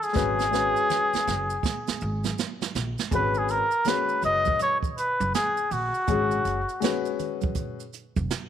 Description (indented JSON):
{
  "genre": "hip hop, jazz-hop",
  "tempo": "81 BPM",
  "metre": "4/4",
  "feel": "swing 63% on 16ths",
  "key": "G# minor",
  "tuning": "A4 = 442 Hz",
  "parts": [
    { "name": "trumpet with cup mute", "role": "melody", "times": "0.0-7.2 s", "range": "F#4 to D#5", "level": "-24 LUFS", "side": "equal", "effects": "none" },
    { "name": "jazz brush drum kit", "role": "drums", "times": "0.0-8.5 s", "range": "hi-hat, kick drum, snare drum", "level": "-30 LUFS", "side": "right 5 dB", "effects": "none" },
    { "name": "maracas and congas", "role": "percussion", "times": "0.0-8.5 s", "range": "none", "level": "-39 LUFS", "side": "right 10 dB", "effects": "none" },
    { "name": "dark baby grand piano", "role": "accompaniment", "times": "0.1-7.8 s", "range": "G#3 to B4", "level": "-29 LUFS", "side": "left 11 dB", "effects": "none" },
    { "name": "upright bass", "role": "bass", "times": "0.2-8.3 s", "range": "E#1 to A#1", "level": "-31 LUFS", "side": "equal", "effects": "none" }
  ],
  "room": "light reverb, studio reverb",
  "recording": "1960s-style stereo with parts hard left and right",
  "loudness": "-23 LUFS",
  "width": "side -9 dB against mid",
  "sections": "0.0-3.1 A section; 3.1-8.5 B section",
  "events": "drum fill 0.2-3.1",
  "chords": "0.2 G#m7",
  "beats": "| 0.16 0.90 1.64 2.38 | 3.12 3.86 4.60 5.34 | 6.08 6.83 7.57 8.31"
}